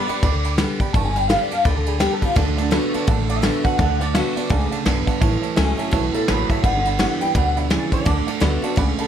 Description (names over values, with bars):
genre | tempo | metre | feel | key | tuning
rockabilly | 169 BPM | 4/4 | swing 60% on 8ths | D major | A4 = 439 Hz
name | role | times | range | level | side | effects
electric guitar through a small old amp | melody | 0.0-9.1 s | D4 to A5 | -24 LUFS | equal | ensemble chorus, analog delay
picked steel-string acoustic guitar | accompaniment | 0.0-9.1 s | G2 to G4 | -27 LUFS | left 4 dB | none
warm upright piano | accompaniment | 0.1-9.1 s | C#5 to C#6 | -31 LUFS | right 10 dB | none
upright bass | bass | 0.1-9.0 s | G1 to D2 | -22 LUFS | equal | none
soft brush drum kit | drums | 0.1-9.1 s | kick drum, ride cymbal, snare drum | -22 LUFS | equal | none
electric guitar through a small old amp | riff | 2.4-9.1 s | G2 to B3 | -26 LUFS | right 6 dB | none
room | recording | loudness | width
light reverb | none | -17 LUFS | side -9 dB against mid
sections
0.0-9.1 A section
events
clean electric guitar solo 0.0-9.1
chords
0.0 G; 2.4 D; 5.2 A; 6.6 G; 8.1 D